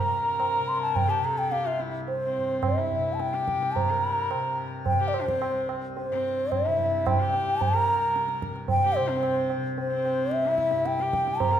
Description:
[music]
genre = indian classical, Hindustani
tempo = 109 BPM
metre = 7/4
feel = straight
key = unclear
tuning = A4 = 440 Hz
[part]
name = bansuri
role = melody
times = 0.0-11.6 s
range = C5 to C6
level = -25 LUFS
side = equal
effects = none
[part]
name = rich sarangi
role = second line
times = 0.0-11.6 s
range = C4 to Bb4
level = -33 LUFS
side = left 4 dB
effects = none
[part]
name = tanpura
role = drone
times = 0.0-11.6 s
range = C2 to C3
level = -35 LUFS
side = left 1 dB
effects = none
[part]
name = tabla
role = percussion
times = 0.4-11.6 s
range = none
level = -30 LUFS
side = right 4 dB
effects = none
[sound]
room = moderate concert hall reverb, RT60 1.9 s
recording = minimal, uncompressed stereo recording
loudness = -23 LUFS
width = side -10 dB against mid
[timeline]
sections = 0.0-3.8 A section; 3.8-11.6 B section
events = speeding up 0.0-11.6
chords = none

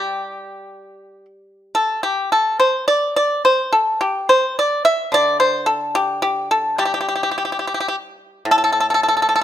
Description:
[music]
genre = chinese traditional, Chinese solo plucked strings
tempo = 71 BPM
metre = 4/4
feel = rubato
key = G zhi mode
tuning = A4 = 439 Hz
[part]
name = pipa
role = solo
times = 0.0-9.4 s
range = A2 to E5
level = -16 LUFS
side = equal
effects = none
[sound]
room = light reverb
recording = close, detailed microphones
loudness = -16 LUFS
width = side -11 dB against mid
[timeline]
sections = 0.0-1.7 A section; 1.7-9.4 B section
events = none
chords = none

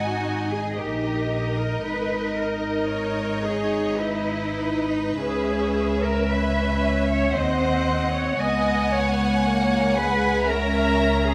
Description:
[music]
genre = classical, slow romantic movement for string orchestra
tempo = 57 BPM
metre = 3/4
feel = rubato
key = G# minor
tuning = A4 = 441 Hz
[part]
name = warm symphonic violin section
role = melody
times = 0.0-11.3 s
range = D#5 to A#5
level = -33 LUFS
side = equal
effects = none
[part]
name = rich symphonic violin section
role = second line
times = 0.0-11.3 s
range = A#4 to F#5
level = -32 LUFS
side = equal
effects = none
[part]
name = clear symphonic viola section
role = accompaniment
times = 0.0-11.3 s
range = G#3 to D#4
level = -30 LUFS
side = equal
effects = none
[part]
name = rich studio cello section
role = bass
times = 0.0-11.3 s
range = D#4 to D#5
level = -28 LUFS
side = equal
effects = none
[part]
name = warm studio double bass section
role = bass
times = 0.0-11.3 s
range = G#1 to Eb2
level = -28 LUFS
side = equal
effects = none
[sound]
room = moderate scoring stage reverb, RT60 1.6 s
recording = none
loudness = -23 LUFS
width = mono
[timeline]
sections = 0.0-11.3 A section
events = none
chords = 0.0 G#5; 0.8 D#/A#; 1.8 G#m; 5.2 C#m; 7.3 Cdim/Eb; 8.4 C#m7

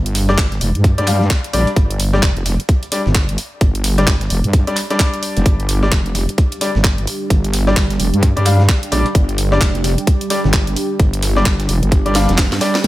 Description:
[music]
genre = bass house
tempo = 130 BPM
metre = 4/4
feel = swing 60% on 16ths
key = unclear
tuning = A4 = 440 Hz
[part]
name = wobble bass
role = bass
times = 0.0-12.6 s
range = F1 to G2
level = -16 LUFS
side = equal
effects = chorus, overdrive, sidechain pumping
[part]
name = breakbeat sampler-style drum kit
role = drums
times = 0.1-12.8 s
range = hi-hat, snare drum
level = -31 LUFS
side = right 1 dB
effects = none
[part]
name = garage drum kit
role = drums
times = 0.1-12.9 s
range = crash cymbal, handclaps, hi-hat, snare drum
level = -21 LUFS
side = equal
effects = studio reverb
[part]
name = clear baby grand piano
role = stabs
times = 0.3-12.7 s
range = G3 to F5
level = -20 LUFS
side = left 2 dB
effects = sidechain pumping, dub echo
[part]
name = electronic kick drum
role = drums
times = 0.4-12.5 s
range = none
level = -14 LUFS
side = equal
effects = studio reverb
[part]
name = dark analog pad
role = sustained chords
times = 6.1-12.9 s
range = G3 to G4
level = -25 LUFS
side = right 3 dB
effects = chorus, sidechain pumping
[sound]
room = digital ambience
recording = none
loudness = -13 LUFS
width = side -16 dB against mid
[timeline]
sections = 0.0-12.8 A section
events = drum fill 12.2-12.8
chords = 0.0 G5

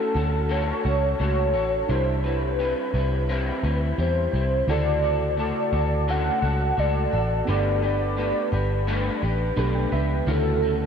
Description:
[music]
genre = indie pop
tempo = 86 BPM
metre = 4/4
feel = straight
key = D major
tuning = A4 = 443 Hz
[part]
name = warm velvety synth lead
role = melody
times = 0.0-10.9 s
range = A4 to F#5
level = -26 LUFS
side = equal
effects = analog chorus, ping-pong delay
[part]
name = electric guitar through a small old amp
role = accompaniment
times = 0.0-10.9 s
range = C3 to B4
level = -28 LUFS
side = left 2 dB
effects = analog chorus, warbly pitch drift
[part]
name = reed electric piano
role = accompaniment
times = 0.0-10.9 s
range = C#3 to B5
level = -33 LUFS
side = right 6 dB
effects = cassette tape
[part]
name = vintage muted picked electric bass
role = bass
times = 0.2-10.9 s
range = G1 to E2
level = -24 LUFS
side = equal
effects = none
[sound]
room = moderate huge ambient reverb, RT60 7.4 s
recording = dreamy mix soaked in reverb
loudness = -21 LUFS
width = side -7 dB against mid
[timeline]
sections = 0.0-10.9 A section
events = reed electric piano fill 9.2-10.3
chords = 0.0 Dmaj7; 1.9 Cmaj7; 4.7 Dmaj7; 7.5 Gadd9; 10.3 Dmaj7

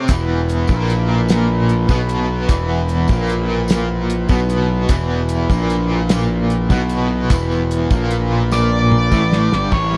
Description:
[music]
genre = psychedelic rock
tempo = 50 BPM (dotted quarters)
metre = 6/8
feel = straight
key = unclear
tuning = A4 = 439 Hz
[part]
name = pedal harmonium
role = sustained chords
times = 0.0-10.0 s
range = E3 to B5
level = -30 LUFS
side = equal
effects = none
[part]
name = cranked stack guitar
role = riff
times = 0.0-10.0 s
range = E2 to E4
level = -22 LUFS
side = equal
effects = overdrive, tremolo
[part]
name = fuzz picked electric bass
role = bass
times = 0.1-10.0 s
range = E1 to B1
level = -21 LUFS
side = equal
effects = overdrive
[part]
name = cloth-damped thuddy drum kit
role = drums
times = 0.1-9.9 s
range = crash cymbal, hi-hat, kick drum, snare drum, toms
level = -19 LUFS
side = equal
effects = none
[part]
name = tambourine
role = percussion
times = 0.1-9.6 s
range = none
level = -40 LUFS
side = equal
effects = none
[part]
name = octave-fuzz lead guitar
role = melody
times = 8.5-10.0 s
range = C#5 to D5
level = -22 LUFS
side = equal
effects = wah, distortion
[sound]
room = little or no reverb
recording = dry, close 1970s-style studio recording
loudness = -17 LUFS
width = mono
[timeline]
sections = 0.0-9.7 A section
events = drum fill 8.5-9.7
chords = 0.1 E5

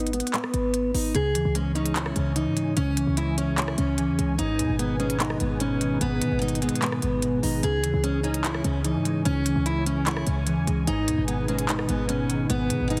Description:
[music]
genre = hip hop, trap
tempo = 148 BPM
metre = 4/4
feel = half-time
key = G# minor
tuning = A4 = 440 Hz
[part]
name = fingerpicked steel-string acoustic guitar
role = melody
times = 0.0-13.0 s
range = B3 to G#4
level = -30 LUFS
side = equal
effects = low-pass filter
[part]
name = short 808-style bass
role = bass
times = 0.0-13.0 s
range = G#1 to D#3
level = -32 LUFS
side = equal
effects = none
[part]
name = trap drum kit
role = drums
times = 0.0-13.0 s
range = handclaps, hi-hat, rim click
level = -33 LUFS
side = equal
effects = none
[part]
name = mellow electric guitar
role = accompaniment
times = 1.1-13.0 s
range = G#2 to C#5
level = -30 LUFS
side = equal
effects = ensemble chorus, low-pass filter
[part]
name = warm analog pad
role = sustained chords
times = 1.1-13.0 s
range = E3 to G#5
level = -39 LUFS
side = equal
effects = chorus
[sound]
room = light reverb, digital ambience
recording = heavily compressed radio sound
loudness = -25 LUFS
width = mono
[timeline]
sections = 0.0-13.0 A section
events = filter sweep 0.0-1.1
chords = 0.0 G#m; 1.1 C#m; 4.4 G#m; 7.6 C#m; 10.9 G#m

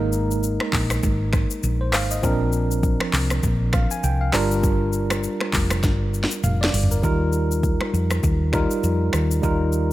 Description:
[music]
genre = afrobeats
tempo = 100 BPM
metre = 4/4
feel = swing 58% on 16ths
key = Eb major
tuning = A4 = 440 Hz
[part]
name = tine electric piano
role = accompaniment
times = 0.0-9.9 s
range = F3 to Ab5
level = -24 LUFS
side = right 1 dB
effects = medium stereo tremolo
[part]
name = hollow-body short-scale fingered electric bass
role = bass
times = 0.0-9.9 s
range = F1 to F2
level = -22 LUFS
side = equal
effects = none
[part]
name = afro-pop drum kit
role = drums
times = 0.1-9.9 s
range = finger snaps, handclaps, hi-hat, kick drum, rim click, shaker, snare drum, toms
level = -23 LUFS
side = equal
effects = none
[sound]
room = little or no reverb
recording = none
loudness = -19 LUFS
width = side -15 dB against mid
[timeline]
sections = 0.0-7.0 A section; 7.0-9.9 B section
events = drum fill 5.8-7.0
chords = 0.0 Absus2; 2.2 Bbadd9; 4.3 Gm7; 7.0 Ebadd9

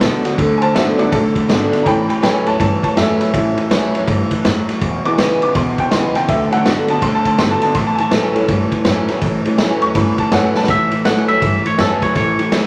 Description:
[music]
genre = rockabilly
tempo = 163 BPM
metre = 4/4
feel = swing 64% on 8ths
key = A mixolydian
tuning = A4 = 440 Hz
[part]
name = picked old ladder-braced acoustic guitar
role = accompaniment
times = 0.0-12.7 s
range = E2 to F#4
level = -23 LUFS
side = equal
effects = none
[part]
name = electric guitar through a small old amp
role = riff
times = 0.0-12.7 s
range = E2 to B3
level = -22 LUFS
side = equal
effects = none
[part]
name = upright bass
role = bass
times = 0.0-12.7 s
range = E1 to B2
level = -28 LUFS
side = equal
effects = none
[part]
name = vintage drum kit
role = drums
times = 0.0-12.6 s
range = kick drum, ride cymbal, snare drum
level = -21 LUFS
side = equal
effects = none
[part]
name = tack piano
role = accompaniment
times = 0.6-10.7 s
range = E3 to D6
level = -21 LUFS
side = equal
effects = none
[part]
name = twangy electric guitar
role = melody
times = 10.7-12.7 s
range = A4 to F#5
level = -20 LUFS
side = equal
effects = none
[sound]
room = wet large studio reverb, RT60 1.3 s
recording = vinyl crackle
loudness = -16 LUFS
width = mono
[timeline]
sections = 0.0-10.7 A section; 10.7-12.7 B section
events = honky-tonk piano solo 0.0-10.7; drum fill 10.5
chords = 0.0 D; 1.9 A; 4.8 E; 6.3 D; 7.8 A

